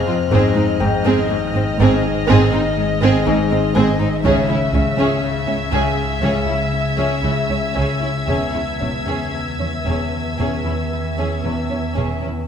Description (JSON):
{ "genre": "cinematic, suspense film score", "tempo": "57-62 BPM", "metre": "4/4", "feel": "straight", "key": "unclear", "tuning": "A4 = 439 Hz", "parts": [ { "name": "warm chamber violin section", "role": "melody", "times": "0.0-12.2 s", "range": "Eb5 to Fb5", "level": "-25 LUFS", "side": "left 2 dB", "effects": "none" }, { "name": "warm chamber violin section", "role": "second line", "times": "0.0-12.3 s", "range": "C4 to Ab4", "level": "-26 LUFS", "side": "equal", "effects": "none" }, { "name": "warm chamber viola section", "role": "accompaniment", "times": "0.0-12.3 s", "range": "C4 to Db4", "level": "-23 LUFS", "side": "right 2 dB", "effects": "none" }, { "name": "Celtic harp", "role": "riff", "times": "0.0-12.5 s", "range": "E2 to Db4", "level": "-23 LUFS", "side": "left 7 dB", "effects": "none" }, { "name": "metallic inharmonic drone", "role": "drone", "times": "0.0-12.5 s", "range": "Ab1 to F2", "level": "-25 LUFS", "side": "right 1 dB", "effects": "chorus, built-in reverb" }, { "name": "warm chamber violin section", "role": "texture", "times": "0.0-11.9 s", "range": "Fb6 to Ab6", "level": "-33 LUFS", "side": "left 2 dB", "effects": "none" }, { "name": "warm grand piano", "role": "texture", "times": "0.0-12.5 s", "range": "Ab4 to Ab5", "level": "-33 LUFS", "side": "left 2 dB", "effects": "none" }, { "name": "dark studio cello section", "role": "bass", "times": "0.1-12.3 s", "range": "Db2 to Ab2", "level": "-24 LUFS", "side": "right 2 dB", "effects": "none" }, { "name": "warm chamber double bass section", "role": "bass", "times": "0.3-12.1 s", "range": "E1 to Db2", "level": "-22 LUFS", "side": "right 3 dB", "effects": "none" } ], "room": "wet scoring stage reverb, RT60 1.7 s", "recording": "none", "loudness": "-16 LUFS", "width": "side -8 dB against mid", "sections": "0.0-12.5 A section", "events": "none", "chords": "0.3 Ab; 4.2 Dbm; 8.3 E6", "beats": "| 0.32 1.30 2.29 3.26 | 4.24 5.23 6.22 7.24 | 8.28 9.34 10.39 11.44" }